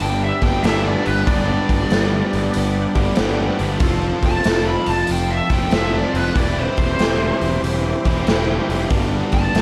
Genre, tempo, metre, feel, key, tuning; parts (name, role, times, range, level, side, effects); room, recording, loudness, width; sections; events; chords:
blues rock power trio and southern rock; 94 BPM; 4/4; swing 66% on 8ths; G mixolydian; A4 = 440 Hz
lead guitar through a small cranked amp; melody; 0.0-9.6 s; B4 to B5; -27 LUFS; equal; wah, overdrive
overdriven tonewheel organ; sustained chords; 0.0-9.6 s; D4 to C5; -33 LUFS; equal
distorted electric guitar; riff; 0.0-9.6 s; E3 to A4; -24 LUFS; equal; distortion
fuzz picked electric bass; bass; 0.0-9.6 s; E1 to G1; -25 LUFS; equal; overdrive
raw garage drum kit; drums; 0.0-9.6 s; hi-hat, kick drum, snare drum; -23 LUFS; equal
moderate lush hall reverb, RT60 1.6 s, small room ambience; big arena sound; -19 LUFS; mono
0.0-9.6 A section
0.0 G; 3.8 F; 6.4 C/E; 8.9 G